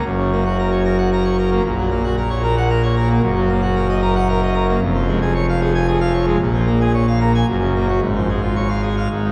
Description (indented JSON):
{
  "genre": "classical, organ toccata",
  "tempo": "113 BPM",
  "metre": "3/4",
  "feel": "straight",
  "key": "Db major from 3.2 s",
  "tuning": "A4 = 439 Hz",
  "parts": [
    { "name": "pipe organ, full organ", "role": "solo", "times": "0.0-9.3 s", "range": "F1 to Ab5", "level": "-18 LUFS", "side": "equal", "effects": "none" }
  ],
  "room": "wet church reverb, RT60 3.2 s",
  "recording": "heard from further back in the room",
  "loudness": "-18 LUFS",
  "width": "mono",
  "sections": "0.0-9.3 A section",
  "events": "none",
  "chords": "0.0 Gb; 1.6 Gb/Bb; 3.2 Ebm/Gb; 4.8 Db/F; 6.4 Bbm7; 7.5 Gb; 8.0 Db/Ab"
}